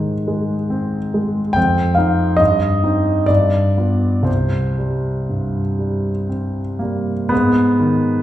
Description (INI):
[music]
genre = classical, romantic nocturne for solo piano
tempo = 58-73 BPM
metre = 3/4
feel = rubato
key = C minor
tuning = A4 = 441 Hz
[part]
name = clear concert grand piano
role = solo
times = 0.0-8.2 s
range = C2 to G5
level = -15 LUFS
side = equal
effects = none
[sound]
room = wet recital hall reverb, RT60 1.3 s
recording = recorded in a church or concert hall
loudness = -15 LUFS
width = side -13 dB against mid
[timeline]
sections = 0.0-7.3 A section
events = none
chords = 0.0 Ab; 1.6 F5; 2.4 Cm/G; 3.3 G7; 4.3 C5; 7.3 G#m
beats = 0.71 | 1.57 2.40 3.29 | 4.27 5.28 6.29 | 7.31